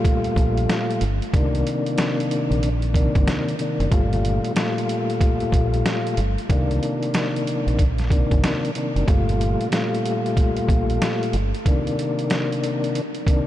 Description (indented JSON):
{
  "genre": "hip hop, boom-bap hip-hop",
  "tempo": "93 BPM",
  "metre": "4/4",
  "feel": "swing 63% on 16ths",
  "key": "G minor",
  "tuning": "A4 = 439 Hz",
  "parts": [
    { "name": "mellow tonewheel organ", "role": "accompaniment", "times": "0.0-13.5 s", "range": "Bb2 to F4", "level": "-22 LUFS", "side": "left 1 dB", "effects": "overdrive, fast rotary speaker, high-pass filter, low-pass filter" },
    { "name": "trip hop sampler-style drum kit", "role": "drums", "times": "0.0-13.5 s", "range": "hi-hat, kick drum, snare drum", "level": "-23 LUFS", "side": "equal", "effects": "none" },
    { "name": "deep dub fingered electric bass", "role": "bass", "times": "0.4-11.5 s", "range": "F#1 to C2", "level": "-23 LUFS", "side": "equal", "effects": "none" }
  ],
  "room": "moderate huge ambient reverb, RT60 8.7 s",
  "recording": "dreamy mix soaked in reverb",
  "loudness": "-19 LUFS",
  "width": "side -13 dB against mid",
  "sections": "0.0-13.5 A section",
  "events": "none",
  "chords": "0.0 Gm9; 1.3 Cm9; 3.9 Gm9; 6.5 Cm9; 9.1 Gm9; 11.7 Cm9",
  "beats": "0.04 0.69 | 1.33 1.98 2.63 3.27 | 3.92 4.56 5.21 5.85 | 6.50 7.14 7.79 8.43 | 9.08 9.72 10.37 11.01 | 11.66 12.30 12.95"
}